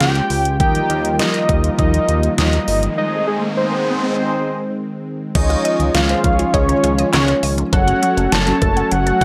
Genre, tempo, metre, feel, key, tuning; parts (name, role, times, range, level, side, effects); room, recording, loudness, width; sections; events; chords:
synth-pop; 101 BPM; 4/4; straight; Db major from 5.4 s; A4 = 440 Hz
fat analog lead; melody; 0.0-9.2 s; Ab4 to A5; -22 LUFS; equal; chorus, plate reverb
brassy analog pad; sustained chords; 0.0-9.2 s; Eb3 to F4; -26 LUFS; equal; chorus
chorused synth bass; bass; 0.0-9.2 s; Gb1 to Eb2; -21 LUFS; equal
pop drum kit; drums; 0.0-9.2 s; crash cymbal, handclaps, hi-hat, kick drum, snare drum; -22 LUFS; equal; overdrive
mellow synth brass; accompaniment; 0.6-9.2 s; Db4 to Eb5; -26 LUFS; equal; chorus, phaser, plate reverb
riser; sound effects; 2.3-4.2 s; -29 LUFS; equal
resonant blip pluck; arpeggios; 5.4-9.2 s; Eb3 to Gb5; -28 LUFS; equal; phaser, plate reverb
moderate small room reverb, RT60 0.6 s; -17 LUFS; mono
0.0-5.4 A section; 5.4-9.2 B section
riser 2.3-5.4; break 3.0-5.4
0.0 Db; 0.6 Ebadd9; 3.0 Ab; 5.4 Dbadd9; 7.7 Gbm